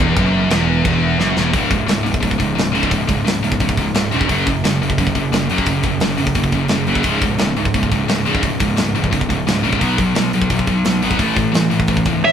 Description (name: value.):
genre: heavy metal.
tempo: 174 BPM.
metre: 4/4.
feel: straight.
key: C# minor.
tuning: A4 = 439 Hz.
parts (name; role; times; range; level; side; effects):
warm chamber string section; sustained chords; 0.0-1.5 s; B2 to B4; -31 LUFS; right 1 dB; none.
scooped high-gain guitar; riff; 0.0-12.3 s; C#2 to B3; -19 LUFS; left 4 dB; distortion.
sludgy distorted guitar; riff; 0.0-12.3 s; C#2 to B3; -21 LUFS; right 5 dB; overdrive.
fuzz picked electric bass; bass; 0.0-12.2 s; C#1 to B1; -22 LUFS; equal; overdrive.
tight metal drum kit; drums; 0.2-12.1 s; china cymbal, hi-hat, kick drum, snare drum; -20 LUFS; equal; none.
nasal lead guitar with a parked wah; second line; 12.2-12.3 s; C#5; -21 LUFS; right 8 dB; overdrive.
high-gain lead guitar; melody; 12.3 s; E5; -11 LUFS; equal; distortion.
room: moderate studio reverb, RT60 0.9 s.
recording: band playing live in one room.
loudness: -14 LUFS.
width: side -8 dB against mid.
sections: 0.0-1.5 A section; 1.5-12.3 B section.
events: drum fill 1.2-1.5.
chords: 0.0 E5; 1.5 C#5; 4.3 F#5; 7.1 C#5; 9.8 B5; 11.2 A.